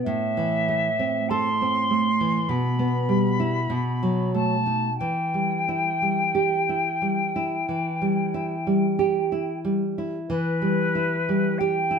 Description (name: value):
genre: romantic duo for flute and classical guitar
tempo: 44-51 BPM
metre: 4/4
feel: rubato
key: E minor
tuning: A4 = 440 Hz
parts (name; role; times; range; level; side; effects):
- silver concert flute; melody; 0.0-12.0 s; B4 to C6; -25 LUFS; left 2 dB; none
- nylon-string guitar; accompaniment; 0.0-12.0 s; A2 to A4; -23 LUFS; right 2 dB; none
room: moderate studio reverb, RT60 0.8 s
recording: band playing live in one room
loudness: -21 LUFS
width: side -6 dB against mid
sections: 0.0-10.3 A section; 10.3-12.0 A section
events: none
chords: 0.1 Am; 2.5 Em/B; 3.7 B7; 5.0 Em